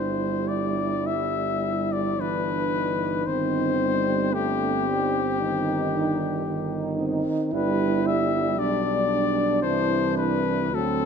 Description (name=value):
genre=classical, hymn-like piece for brass band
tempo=51-58 BPM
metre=4/4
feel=rubato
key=unclear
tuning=A4 = 440 Hz
part: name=clear cornet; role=melody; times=0.0-11.1 s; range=G4 to E5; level=-26 LUFS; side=left 9 dB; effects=none
part: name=mellow French horn section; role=second line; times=0.0-11.1 s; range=C4 to E4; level=-29 LUFS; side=right 7 dB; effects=none
part: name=mellow euphonium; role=accompaniment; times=0.0-11.1 s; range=C4 to F#4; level=-32 LUFS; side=left 2 dB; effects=none
part: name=warm trombone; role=accompaniment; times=0.0-11.1 s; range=Eb3 to A3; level=-31 LUFS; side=right 5 dB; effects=none
part: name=warm tuba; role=bass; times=0.0-11.1 s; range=G1 to D2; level=-30 LUFS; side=right 2 dB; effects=none
room=moderate scoring stage reverb, RT60 1.5 s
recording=close, detailed microphones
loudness=-22 LUFS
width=side -6 dB against mid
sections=0.0-11.1 A section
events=none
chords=0.0 G; 3.3 Cm/G; 7.5 G; 9.6 C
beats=1.07 2.20 | 3.27 4.35 5.41 6.46 | 7.52 8.57 9.63 10.73